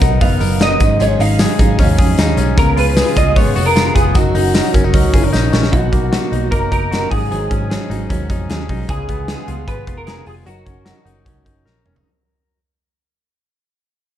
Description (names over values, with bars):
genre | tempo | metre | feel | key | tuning
jangly indie pop | 152 BPM | 4/4 | straight | F# major | A4 = 440 Hz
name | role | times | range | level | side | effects
electric guitar through a small old amp | melody | 0.0-11.7 s | F#4 to F#5 | -19 LUFS | right 1 dB | ensemble chorus, plate reverb
picked steel-string acoustic guitar | accompaniment | 0.0-12.1 s | G#2 to A#4 | -23 LUFS | right 6 dB | plate reverb
direct-recorded clean electric guitar | arpeggios | 0.0-12.6 s | G#2 to A#4 | -22 LUFS | left 5 dB | plate reverb
vintage muted picked electric bass | bass | 0.0-12.0 s | E#1 to E#2 | -18 LUFS | equal | none
big rock drum kit | drums | 0.0-12.1 s | hi-hat, kick drum, snare drum, toms | -16 LUFS | equal | none
tambourine | percussion | 0.0-5.6 s | none | -34 LUFS | left 8 dB | none
room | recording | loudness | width
light reverb | dark, warm production | -12 LUFS | side -11 dB against mid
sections
0.0-5.7 A section; 5.7-12.1 B section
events
drum fill 5.3-5.7, 11.7-12.1; fade-out 5.7-12.1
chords
0.0 Bmaj7; 0.8 G#7sus4; 2.6 C#7; 4.2 F#6; 5.7 Bmaj7; 7.1 G#7sus4; 8.9 C#7; 10.5 F#6